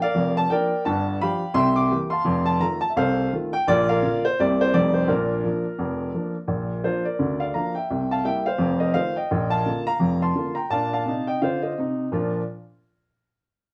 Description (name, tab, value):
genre	jazz, stride piano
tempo	170 BPM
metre	4/4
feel	swing 59% on 8ths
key	Bb major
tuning	A4 = 438 Hz
part	warm upright piano	solo	0.0-12.4 s	F1 to D6	-23 LUFS	equal	none
room	moderate studio reverb, RT60 0.7 s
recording	worn, warbling old tape, cassette tape, warbly pitch drift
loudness	-23 LUFS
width	mono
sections	0.0-6.5 A section; 6.5-12.1 B section; 12.1-13.5 C section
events	none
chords	0.0 Bb; 0.9 G7; 1.6 C7; 2.3 F7; 3.7 Bb; 4.4 C7; 4.7 F9; 5.1 Bb; 7.2 Bb/D; 7.9 C7; 8.6 F7; 9.3 Bb; 10.7 F7/Bb; 12.1 Bb